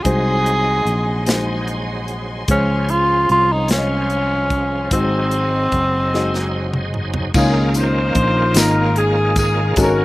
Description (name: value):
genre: slow gospel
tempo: 49 BPM (dotted quarters)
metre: 6/8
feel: straight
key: Db major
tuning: A4 = 440 Hz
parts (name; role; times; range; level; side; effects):
- warm tenor saxophone; melody; 0.0-6.9 s; C4 to Ab4; -18 LUFS; equal; none
- warm upright piano; accompaniment; 0.0-10.0 s; Ab2 to Eb5; -23 LUFS; left 2 dB; none
- bright tonewheel organ; sustained chords; 0.0-10.0 s; Eb3 to C5; -27 LUFS; right 2 dB; slow rotary speaker, chorus vibrato
- warm studio string section; sustained chords; 0.0-7.3 s; Db4 to C6; -32 LUFS; equal; none
- fingered electric bass; bass; 0.0-10.0 s; Gb1 to Db2; -20 LUFS; equal; none
- tight funk drum kit; drums; 0.1-10.0 s; crash cymbal, hi-hat, kick drum, snare drum, toms; -21 LUFS; equal; none
- tambourine; percussion; 7.3-10.0 s; none; -28 LUFS; left 4 dB; none
- mellow horn section; melody; 7.4-10.0 s; Db4 to C5; -18 LUFS; equal; none
room: little or no reverb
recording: recorded outdoors, with no room sound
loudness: -15 LUFS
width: side -18 dB against mid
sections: 0.0-7.3 A section; 7.3-10.0 B section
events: drum fill 6.1-7.3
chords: 0.0 Ab7; 2.5 Dbmaj7; 4.9 Ab7; 7.3 Db69